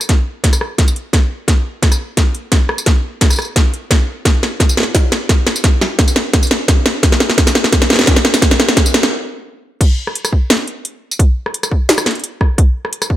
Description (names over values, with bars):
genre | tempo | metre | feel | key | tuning
drum and bass | 173 BPM | 4/4 | half-time | none | none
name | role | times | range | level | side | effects
drum and bass drum kit | drums | 0.0-13.1 s | crash cymbal, hi-hat, rim click, snare drum, tambourine | -14 LUFS | equal | none
electronic kick drum | drums | 0.1-13.2 s | none | -13 LUFS | equal | none
room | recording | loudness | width
moderate digital room reverb, RT60 1.0 s | none | -12 LUFS | side -13 dB against mid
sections
0.0-9.8 A section; 9.8-13.2 B section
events
build-up 0.0-9.8; drum fill 0.0-9.1; stop 9.1-9.8; drop 9.8-13.2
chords
none